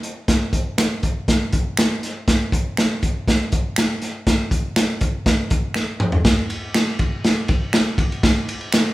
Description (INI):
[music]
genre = soul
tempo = 121 BPM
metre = 4/4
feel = straight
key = none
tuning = none
[part]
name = crunchy breakbeat drum kit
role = drums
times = 0.0-8.8 s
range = hi-hat, kick drum, ride cymbal, snare drum, toms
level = -18 LUFS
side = equal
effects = none
[part]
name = finger snap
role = percussion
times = 0.8-8.8 s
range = none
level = -27 LUFS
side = right 2 dB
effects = none
[sound]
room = wet large studio reverb, RT60 1.1 s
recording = band playing live in one room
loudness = -18 LUFS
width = side -17 dB against mid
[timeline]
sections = 0.0-6.3 A section; 6.3-8.9 B section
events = drum fill 5.8-6.3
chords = none